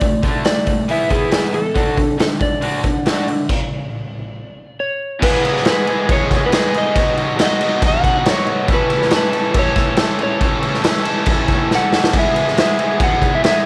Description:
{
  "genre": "garage rock duo or trio",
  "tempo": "139 BPM",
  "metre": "4/4",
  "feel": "straight",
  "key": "E mixolydian",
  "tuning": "A4 = 440 Hz",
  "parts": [
    { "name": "electric slide guitar", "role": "melody", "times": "0.0-13.7 s", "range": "G#4 to F#5", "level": "-22 LUFS", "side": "equal", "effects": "none" },
    { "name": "raw garage guitar", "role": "riff", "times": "0.0-13.7 s", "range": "E2 to A4", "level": "-22 LUFS", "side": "equal", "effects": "overdrive" },
    { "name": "raw garage drum kit", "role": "drums", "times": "0.0-13.5 s", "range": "crash cymbal, hi-hat, kick drum, snare drum", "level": "-20 LUFS", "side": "equal", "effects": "none" }
  ],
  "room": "light reverb, small room ambience",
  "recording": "none",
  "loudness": "-17 LUFS",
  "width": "mono",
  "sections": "0.0-5.2 A section; 5.2-13.7 B section",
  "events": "stop 3.5-5.2; drum fill 11.7-12.1",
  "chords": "0.0 D5; 0.9 E5; 1.8 D; 4.8 N.C.; 5.2 E; 7.0 B; 8.7 A; 12.1 E",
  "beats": "| 0.02 0.46 0.89 1.32 | 1.76 2.19 2.63 3.06 | 3.50 3.93 4.37 4.80 | 5.23 5.67 6.10 6.53 | 6.96 7.39 7.83 8.26 | 8.69 9.12 9.55 9.98 | 10.41 10.84 11.27 11.71 | 12.14 12.57 13.00 13.43"
}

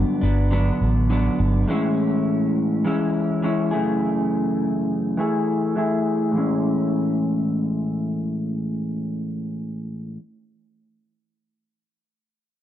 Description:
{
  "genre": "indie pop, bedroom pop",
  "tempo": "103 BPM",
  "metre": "4/4",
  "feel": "straight",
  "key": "A major",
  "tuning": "A4 = 438 Hz",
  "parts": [
    { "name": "electric guitar through a small old amp", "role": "accompaniment", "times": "0.0-10.2 s", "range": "F#2 to G#4", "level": "-21 LUFS", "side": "equal", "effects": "wide subtle chorus, vibrato effect, low-pass filter" },
    { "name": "vintage muted fingered electric bass", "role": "bass", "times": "0.0-1.6 s", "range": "G1 to A1", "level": "-20 LUFS", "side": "equal", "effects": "none" }
  ],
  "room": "moderate spring reverb, RT60 2.4 s",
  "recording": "dark, warm production, nothing above 10.8 kHz",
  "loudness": "-20 LUFS",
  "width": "side -11 dB against mid",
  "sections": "0.0-6.3 A section; 6.3-8.7 B section",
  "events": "filter sweep on clean electric guitar 0.0-6.3",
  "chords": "0.0 Gmaj7; 1.7 Amaj7; 3.7 F#m9; 6.3 Amaj7",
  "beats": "0.52 1.10 | 1.68 2.26 2.85 3.43 | 4.01 4.59 5.18 5.76 | 6.34 6.93 7.51 8.09"
}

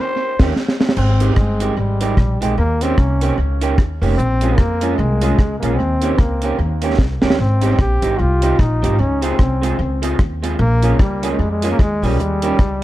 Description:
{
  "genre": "ska",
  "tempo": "150 BPM",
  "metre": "4/4",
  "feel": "swing 59% on 8ths",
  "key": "Ab major",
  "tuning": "A4 = 440 Hz",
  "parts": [
    { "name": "electric guitar through a small old amp", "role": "accompaniment", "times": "0.4-12.6 s", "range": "Eb3 to Ab4", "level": "-23 LUFS", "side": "right 4 dB", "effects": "tape echo" },
    { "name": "upright bass", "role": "bass", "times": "0.4-12.8 s", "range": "F1 to F2", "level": "-18 LUFS", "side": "equal", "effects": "none" },
    { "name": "deep reggae drum kit", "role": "drums", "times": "0.4-12.7 s", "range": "crash cymbal, hi-hat, kick drum, rim click, snare drum", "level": "-17 LUFS", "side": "equal", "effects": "tape echo" },
    { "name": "clear trombone", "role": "melody", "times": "1.0-12.8 s", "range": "G3 to G4", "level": "-21 LUFS", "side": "left 1 dB", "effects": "tape echo" }
  ],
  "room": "light reverb",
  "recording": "dark, warm production",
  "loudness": "-14 LUFS",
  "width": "side -15 dB against mid",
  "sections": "1.0-12.8 A section",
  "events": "band accent 0.0-1.0; drum fill 0.6-1.0, 7.0-7.4",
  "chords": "0.0 Eb7; 1.0 Abmaj7; 2.6 Eb7; 4.2 Bbm7; 5.8 Eb7; 7.4 Abmaj7; 9.0 Dbmaj7; 10.6 Bbm7; 12.2 Eb7",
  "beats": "0.16 0.57 | 0.97 1.37 1.77 2.17 | 2.58 2.98 3.38 3.78 | 4.18 4.59 4.99 5.39 | 5.79 6.19 6.59 6.99 | 7.39 7.79 8.19 8.59 | 8.99 9.39 9.79 10.19 | 10.59 10.99 11.39 11.79 | 12.19 12.59"
}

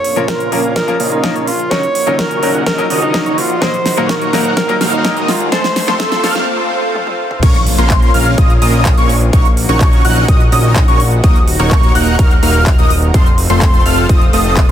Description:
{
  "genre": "EDM, festival progressive house",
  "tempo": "126 BPM",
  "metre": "4/4",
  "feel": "straight",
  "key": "Bb harmonic minor",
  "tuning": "A4 = 440 Hz",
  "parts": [
    { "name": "warm alto saxophone", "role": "melody", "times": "0.0-6.5 s", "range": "Eb4 to Db5", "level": "-18 LUFS", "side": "right 1 dB", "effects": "digital delay" },
    { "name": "lush unison pad", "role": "sustained chords", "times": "0.0-14.7 s", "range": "Eb3 to Bb4", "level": "-22 LUFS", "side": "equal", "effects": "chorus, sidechain pumping" },
    { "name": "fat analog bass", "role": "bass", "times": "0.0-14.7 s", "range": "Eb1 to Eb2", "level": "-18 LUFS", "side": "equal", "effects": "sidechain pumping, high-pass filter" },
    { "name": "big-room dance drum kit", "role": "drums", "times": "0.0-14.7 s", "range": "crash cymbal, handclaps, hi-hat, snare drum, toms", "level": "-20 LUFS", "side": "equal", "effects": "none" },
    { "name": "riser and impact", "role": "sound effects", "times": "1.5-9.3 s", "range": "none", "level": "-24 LUFS", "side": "equal", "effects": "none" },
    { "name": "bright grand piano", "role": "accompaniment", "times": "0.2-6.3 s", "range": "F3 to Bb4", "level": "-22 LUFS", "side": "left 4 dB", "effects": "sidechain pumping, digital delay" },
    { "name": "wide unison lead", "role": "arpeggios", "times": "0.2-14.7 s", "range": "C6 to Gb6", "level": "-20 LUFS", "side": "left 1 dB", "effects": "ensemble chorus, sidechain pumping, digital delay" },
    { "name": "dense compressed supersaw", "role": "riff", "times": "0.2-14.7 s", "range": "A3 to Gb5", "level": "-19 LUFS", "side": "right 1 dB", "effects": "sidechain pumping, low-pass filter, digital delay" },
    { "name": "electronic kick drum", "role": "drums", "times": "0.3-14.7 s", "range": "none", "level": "-11 LUFS", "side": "equal", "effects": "high-pass filter on kick" }
  ],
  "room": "little or no reverb",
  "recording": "dense, heavily limited modern master, high-pass filter",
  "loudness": "-10 LUFS",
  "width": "side -10 dB against mid",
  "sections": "0.0-7.4 A section; 7.4-14.7 B section",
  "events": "build-up 0.0-7.4; drum fill 0.0-6.5, 7.0-7.4; filter sweep on supersaw synth 0.0-7.4; filter sweep on analog synth lead 0.0-7.4; riser 1.5-6.5; break 6.5-7.4; drop 7.4-14.7; impact 7.4-9.3",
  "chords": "0.0 Bbm; 1.7 Gb6/Bb; 3.6 Ebm; 5.5 F; 7.4 Bbm; 9.3 Gb6/Bb; 11.2 Ebm; 13.1 F",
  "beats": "0.28 0.76 1.24 | 1.71 2.19 2.67 3.14 | 3.62 4.09 4.57 5.05 | 5.52 6.00 6.47 6.95 | 7.43 7.90 8.38 8.86 | 9.33 9.81 10.28 10.76 | 11.24 11.71 12.19 12.66 | 13.14 13.62 14.09 14.57"
}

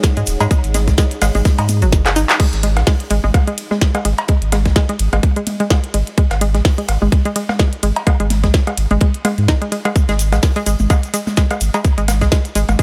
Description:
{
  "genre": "minimal techno",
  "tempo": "127 BPM",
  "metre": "4/4",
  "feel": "swing 56% on 16ths",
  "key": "unclear",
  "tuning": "A4 = 438 Hz",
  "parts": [
    { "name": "big rock drum kit", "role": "drums", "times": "0.0-12.8 s", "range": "hi-hat, ride cymbal, snare drum", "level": "-36 LUFS", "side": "equal", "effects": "none" },
    { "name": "electronic kick drum", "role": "drums", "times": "0.0-12.8 s", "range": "none", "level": "-16 LUFS", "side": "equal", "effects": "overdrive" },
    { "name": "minimal click drum kit", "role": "drums", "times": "0.0-12.8 s", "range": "crash cymbal, handclaps, hi-hat, ride cymbal, snare drum", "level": "-24 LUFS", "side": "equal", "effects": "overdrive" },
    { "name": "tube shaker", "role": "percussion", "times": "0.0-2.4, 10.0-12.8 s", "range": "none", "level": "-32 LUFS", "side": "equal", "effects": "none" },
    { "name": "deep dark ambient pad", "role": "texture", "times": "0.0-2.4 s", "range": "D#4 to F#5", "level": "-33 LUFS", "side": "equal", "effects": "chorus, built-in reverb, sidechain pumping" },
    { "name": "hollow square pluck", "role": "riff", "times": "0.2-12.8 s", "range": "F#3 to G#4", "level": "-24 LUFS", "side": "equal", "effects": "chorus, vintage 12-bit sampler grit, sidechain pumping, dub echo" },
    { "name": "saturated sub bass", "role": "bass", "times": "0.2-12.8 s", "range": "D#1 to G#2", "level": "-18 LUFS", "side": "equal", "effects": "tube saturation, sidechain pumping" },
    { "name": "electronic cowbell and toms", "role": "percussion", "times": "0.4-12.8 s", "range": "none", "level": "-25 LUFS", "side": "equal", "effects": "dub echo" }
  ],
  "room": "little or no reverb",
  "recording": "none",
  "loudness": "-16 LUFS",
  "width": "mono",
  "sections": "0.0-2.4 A section; 2.4-12.8 A section",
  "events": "drop 0.0-2.4, 2.4-12.8; drum fill 2.0-2.4",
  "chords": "0.0 G#5",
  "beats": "0.04 | 0.51 0.98 1.45 1.93 | 2.40 2.87 3.34 3.81 | 4.29 4.76 5.23 5.71 | 6.18 6.65 7.12 7.59 | 8.07 8.54 9.01 9.48 | 9.96 10.43 10.90 11.37 | 11.85 12.32 12.79"
}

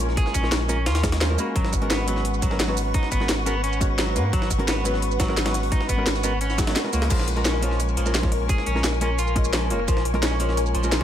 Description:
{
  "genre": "liquid drum and bass",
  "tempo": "173 BPM",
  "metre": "4/4",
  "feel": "straight",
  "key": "unclear",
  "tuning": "A4 = 440 Hz",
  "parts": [
    { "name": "hollow-body jazz guitar", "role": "accompaniment", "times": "0.0-11.0 s", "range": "G#3 to B5", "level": "-29 LUFS", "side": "equal", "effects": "vintage 12-bit sampler grit, tape echo" },
    { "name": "glassy FM pad", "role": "sustained chords", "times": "0.0-11.0 s", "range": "A#4 to C#6", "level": "-29 LUFS", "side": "left 1 dB", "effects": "ensemble chorus, built-in reverb, sidechain pumping" },
    { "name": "warm sub bass", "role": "bass", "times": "0.0-11.0 s", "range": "E#1 to G#2", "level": "-25 LUFS", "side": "equal", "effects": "none" },
    { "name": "breakbeat sampler-style drum kit", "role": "drums", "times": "0.0-11.0 s", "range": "hi-hat, snare drum", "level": "-31 LUFS", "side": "left 1 dB", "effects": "high-pass filter on hats, small room ambience, high-pass filter on snare" },
    { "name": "drum and bass drum kit", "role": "drums", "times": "0.0-11.0 s", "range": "crash cymbal, hi-hat, rim click, shaker, snare drum", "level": "-28 LUFS", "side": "equal", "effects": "small room ambience" },
    { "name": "clean electric guitar", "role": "arpeggios", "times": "0.2-11.0 s", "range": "E#3 to G#4", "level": "-30 LUFS", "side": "right 2 dB", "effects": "ping-pong delay" },
    { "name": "electronic kick drum", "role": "drums", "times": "0.2-11.0 s", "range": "none", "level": "-24 LUFS", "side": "equal", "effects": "small room ambience" }
  ],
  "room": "light reverb, digital ambience",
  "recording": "none",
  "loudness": "-20 LUFS",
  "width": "side -10 dB against mid",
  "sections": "0.0-7.1 A section; 7.1-11.0 A section",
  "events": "drop 0.0-7.1, 7.1-11.0",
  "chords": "0.0 A#m7; 1.4 G#m11; 7.1 A#m7",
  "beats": "| 0.17 0.52 0.86 1.21 | 1.56 1.90 2.25 2.60 | 2.94 3.29 3.64 3.98 | 4.33 4.68 5.03 5.37 | 5.72 6.07 6.41 6.76 | 7.11 7.45 7.80 8.15 | 8.49 8.84 9.19 9.53 | 9.88 10.23 10.57 10.92"
}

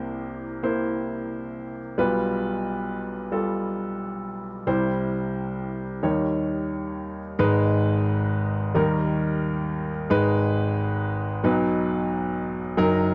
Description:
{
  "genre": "folk",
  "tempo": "44 BPM (dotted quarters)",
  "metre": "6/8",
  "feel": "straight",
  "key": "unclear",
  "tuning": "A4 = 440 Hz",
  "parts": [
    { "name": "warm grand piano", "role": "solo", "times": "0.0-13.1 s", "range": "F#1 to Db5", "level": "-25 LUFS", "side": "equal", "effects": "none" }
  ],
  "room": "light reverb",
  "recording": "dark, warm production, nothing above 7.5 kHz",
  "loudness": "-25 LUFS",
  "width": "mono",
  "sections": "0.0-7.4 A section; 7.4-13.1 B section",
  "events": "none",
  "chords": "0.0 C7; 2.0 G7/B; 4.7 C; 6.0 Eb7; 7.4 G#m; 8.8 D#; 10.1 G#m; 11.4 B",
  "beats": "0.64 | 1.98 3.32 | 4.67 6.03 | 7.39 8.76 | 10.11 11.45 | 12.79"
}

